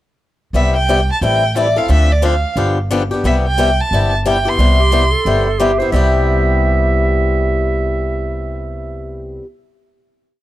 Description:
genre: acoustic string swing (jazz manouche).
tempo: 178 BPM.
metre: 4/4.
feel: swing 61% on 8ths.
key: C major.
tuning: A4 = 440 Hz.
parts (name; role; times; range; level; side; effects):
picked swing-style acoustic guitar; accompaniment; 0.5-9.5 s; C3 to A4; -18 LUFS; left 4 dB; none.
upright bass; bass; 0.5-9.4 s; G1 to D2; -16 LUFS; equal; none.
warm violin; melody; 0.6-5.6 s; D5 to C6; -18 LUFS; right 3 dB; none.
breathy clarinet; second line; 4.8-9.4 s; G4 to E5; -20 LUFS; right 6 dB; none.
room: small room reverb.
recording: dry, close 1970s-style studio recording.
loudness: -12 LUFS.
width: side -14 dB against mid.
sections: 0.5-5.9 A section; 5.9-8.6 final chord.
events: none.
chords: 0.5 Cmaj7; 1.2 Am7; 1.9 Dm7; 2.6 G7; 3.2 Cmaj7.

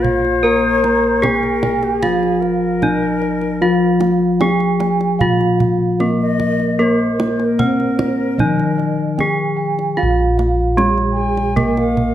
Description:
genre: Javanese gamelan.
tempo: 75 BPM.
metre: 4/4.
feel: straight.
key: Bb slendro.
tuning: A4 = 440 Hz.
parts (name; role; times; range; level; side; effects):
gamelan-type bronze metallophone; melody; 0.0-12.1 s; Ab3-45c to Bb4; -18 LUFS; equal; none.
bright bansuri; second line; 0.0-12.1 s; Ab4-42c to Ab5-45c; -22 LUFS; left 5 dB; none.
gamelan-type bronze metallophone; accompaniment; 0.0-10.0 s; Eb3-35c to Bb3; -20 LUFS; left 3 dB; none.
gamelan-type bronze metallophone; arpeggios; 0.0-12.1 s; Ab4-45c to Bb5; -24 LUFS; right 6 dB; none.
gamelan-type bossed gongs; bass; 0.0-12.1 s; Bb1 to Bb4; -22 LUFS; equal; none.
kendang; percussion; 0.0-12.1 s; none; -24 LUFS; right 2 dB; none.
room: wet recital hall reverb, RT60 1.4 s.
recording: none.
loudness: -14 LUFS.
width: side -11 dB against mid.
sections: 0.0-10.0 A section; 10.0-12.1 A section.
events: none.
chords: none.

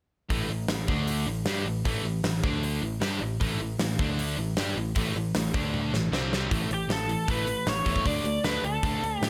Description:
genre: hard rock.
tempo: 155 BPM.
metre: 4/4.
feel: straight.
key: unclear.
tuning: A4 = 440 Hz.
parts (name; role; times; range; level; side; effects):
distorted electric guitar; riff; 0.3-9.3 s; A2 to G4; -35 LUFS; equal; overdrive.
overdriven semi-hollow guitar; riff; 0.3-9.3 s; A2 to G4; -36 LUFS; equal; none.
picked electric bass; bass; 0.3-9.3 s; A1 to A2; -34 LUFS; equal; none.
gated 80s drum kit; drums; 0.3-9.3 s; hi-hat, kick drum, snare drum, toms; -33 LUFS; equal; none.
biting lead guitar; melody; 6.7-9.3 s; G4 to D5; -32 LUFS; equal; overdrive.
room: little or no reverb.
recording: none.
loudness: -28 LUFS.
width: mono.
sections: 0.3-6.5 A section; 6.5-9.3 B section.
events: drum fill 5.7-6.5.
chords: 0.3 A5; 0.9 D5; 1.3 A5; 2.4 D5; 2.8 A5; 4.0 D5; 4.4 A5; 5.5 D5; 5.9 A5; 6.1 C5; 6.5 A5; 8.1 D5.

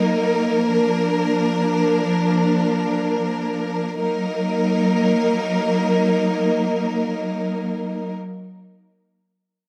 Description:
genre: hip hop.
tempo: free time.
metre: none.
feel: none.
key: Eb harmonic minor.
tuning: A4 = 440 Hz.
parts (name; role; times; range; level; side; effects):
warm symphonic string section; sustained chords; 0.0-8.1 s; F3 to Bb4; -21 LUFS; equal; none.
room: light reverb, small room reverb.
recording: echo-heavy mix.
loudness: -20 LUFS.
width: mono.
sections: 0.0-4.0 A section; 4.0-7.4 B section.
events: none.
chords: 0.0 Ebm; 0.6 Bb; 4.0 Ebm.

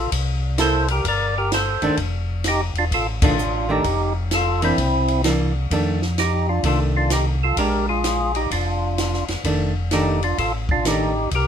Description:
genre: soul jazz organ trio.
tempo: 129 BPM.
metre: 4/4.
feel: swing 65% on 8ths.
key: F mixolydian.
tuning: A4 = 440 Hz.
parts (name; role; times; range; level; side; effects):
percussive tonewheel organ; melody; 0.0-11.5 s; C4 to D5; -22 LUFS; equal; slow rotary speaker, overdrive.
mellow tonewheel organ; bass; 0.0-11.5 s; E1 to F2; -23 LUFS; equal; chorus vibrato, slow rotary speaker.
compact cocktail drum kit; drums; 0.1-11.5 s; hi-hat, kick drum, ride cymbal, snare drum; -26 LUFS; equal; none.
archtop guitar, miked and amplified; accompaniment; 0.6-11.1 s; Eb3 to A4; -23 LUFS; right 2 dB; none.
room: moderate studio reverb, RT60 0.6 s.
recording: minimal, uncompressed stereo recording.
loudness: -18 LUFS.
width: side -8 dB against mid.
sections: 0.0-5.7 A section; 5.7-11.5 A section.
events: band accent 3.1.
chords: 0.1 C13; 2.0 F13; 4.8 C9; 5.7 F6; 7.6 Bb6; 9.4 F13.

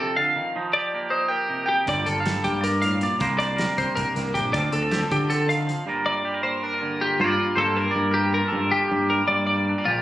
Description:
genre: math rock and midwest emo.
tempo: 316 BPM (eighths).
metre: 7/8.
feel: straight.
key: G minor.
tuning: A4 = 444 Hz.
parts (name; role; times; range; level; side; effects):
twangy electric guitar; accompaniment; 0.0-10.0 s; G2 to Bb4; -27 LUFS; right 3 dB; spring reverb.
twelve-string electric guitar; arpeggios; 0.0-10.0 s; F4 to F5; -24 LUFS; left 1 dB; wide subtle chorus.
twangy electric guitar; melody; 1.1-3.7, 7.2-9.4 s; G4 to G5; -27 LUFS; equal; none.
growling fingered electric bass; bass; 1.9-10.0 s; G1 to D3; -26 LUFS; left 1 dB; overdrive.
loose indie drum kit; drums; 1.9-5.8 s; hi-hat, kick drum, snare drum; -32 LUFS; equal; none.
room: light reverb.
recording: recorded on a phone in the room, studio reverb.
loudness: -20 LUFS.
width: side -14 dB against mid.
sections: 0.0-7.2 A section; 7.2-10.0 B section.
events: none.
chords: 0.0 Dm7; 0.5 F9sus4; 1.9 Gm9; 3.2 Csus2; 4.5 Dm7; 5.9 Gm7.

